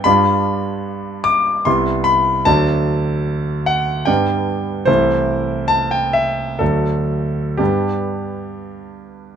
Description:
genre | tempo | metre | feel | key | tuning
classical, romantic character piece for solo piano | 57-76 BPM | 3/4 | rubato | G major | A4 = 445 Hz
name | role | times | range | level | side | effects
clear concert grand piano | solo | 0.0-9.4 s | C2 to D6 | -16 LUFS | equal | none
room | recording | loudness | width
light reverb | close, detailed microphones | -15 LUFS | side -8 dB against mid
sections
0.0-9.4 A section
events
none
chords
0.1 G7; 1.7 Cmaj7; 2.5 D; 4.1 G; 4.9 Am/C; 6.6 D; 7.6 G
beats
| 0.05 0.86 1.66 | 2.46 3.27 4.08 | 4.88 5.70 6.61 | 7.59 8.63

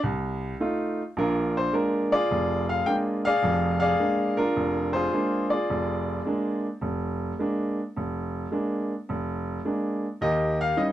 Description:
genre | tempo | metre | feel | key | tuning
solo jazz | 106 BPM | 4/4 | swing 68% on 8ths | Bb mixolydian | A4 = 440 Hz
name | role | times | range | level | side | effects
clear baby grand piano | solo | 0.0-10.9 s | F1 to G5 | -24 LUFS | equal | none
room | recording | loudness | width
light reverb | dry, close 1970s-style studio recording | -24 LUFS | side -12 dB against mid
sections
0.0-1.2 A section; 1.2-10.9 B section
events
grand piano solo 0.0-1.2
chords
0.0 F7; 1.2 Bb7; 10.2 Eb7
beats
0.04 0.60 | 1.17 1.73 2.29 2.86 | 3.42 3.99 4.55 5.11 | 5.68 6.24 6.81 7.37 | 7.94 8.50 9.07 9.63 | 10.20 10.76

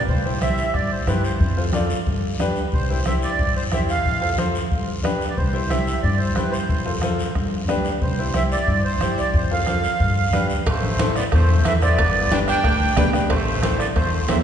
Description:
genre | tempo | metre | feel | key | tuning
latin, cumbia | 182 BPM | 4/4 | straight | C major | A4 = 440 Hz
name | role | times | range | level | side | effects
accordion | melody | 0.0-14.4 s | B4 to G5 | -24 LUFS | right 3 dB | light tremolo tuning
upright bass | bass | 0.1-14.4 s | G1 to G2 | -23 LUFS | equal | none
bombo | percussion | 0.1-14.4 s | none | -26 LUFS | equal | none
congas | percussion | 0.1-14.4 s | none | -29 LUFS | equal | none
guiro | percussion | 0.1-14.4 s | none | -35 LUFS | left 3 dB | none
bright upright piano | accompaniment | 0.3-14.3 s | D4 to D5 | -26 LUFS | left 2 dB | none
clear trumpet | second line | 10.7-14.4 s | A3 to D4 | -29 LUFS | right 3 dB | none
cowbell and timbales | percussion | 10.7-14.4 s | none | -30 LUFS | right 4 dB | none
room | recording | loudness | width
wet church reverb, RT60 2.5 s | recorded in a church or concert hall, nothing above 10.3 kHz | -18 LUFS | side -8 dB against mid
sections
0.1-10.7 A section; 10.7-14.4 B section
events
none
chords
0.1 C; 1.4 F; 2.1 G; 2.7 C; 4.1 F; 4.7 G; 5.4 C; 6.7 F; 7.4 G; 8.0 C; 9.3 F; 10.0 G; 10.7 Am; 12.0 G; 13.3 Am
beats
| 0.08 0.41 0.74 1.07 | 1.41 1.74 2.07 2.40 | 2.73 3.06 3.39 3.72 | 4.05 4.38 4.71 5.04 | 5.37 5.71 6.04 6.37 | 6.70 7.03 7.36 7.69 | 8.02 8.35 8.68 9.01 | 9.34 9.67 10.00 10.33 | 10.66 10.99 11.32 11.65 | 11.98 12.31 12.64 12.97 | 13.30 13.63 13.96 14.29

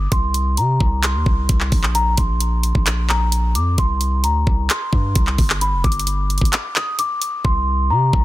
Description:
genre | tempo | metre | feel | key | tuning
hip hop, trap | 131 BPM | 4/4 | half-time | unclear | A4 = 440 Hz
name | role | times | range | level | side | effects
large celesta | melody | 0.0-8.2 s | Bb5 to Eb6 | -22 LUFS | left 1 dB | low-pass filter, tape echo
long sustained 808-style bass | bass | 0.0-8.2 s | F1 to C3 | -19 LUFS | equal | none
trap drum kit | drums | 0.1-8.2 s | handclaps, hi-hat, kick drum | -18 LUFS | equal | none
room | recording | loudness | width
digital ambience | dense, heavily limited modern master | -16 LUFS | side -16 dB against mid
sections
0.0-8.2 A section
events
filter sweep on celesta 0.0-7.4; break 6.5-7.4; hi-hats muted 7.4-8.2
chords
0.1 N.C.; 1.9 Bb5; 3.8 C5; 5.6 G5; 7.4 N.C.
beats
| 0.12 0.58 1.03 1.49 | 1.95 2.41 2.87 3.32 | 3.78 4.24 4.70 5.16 | 5.61 6.07 6.53 6.99 | 7.45 7.90

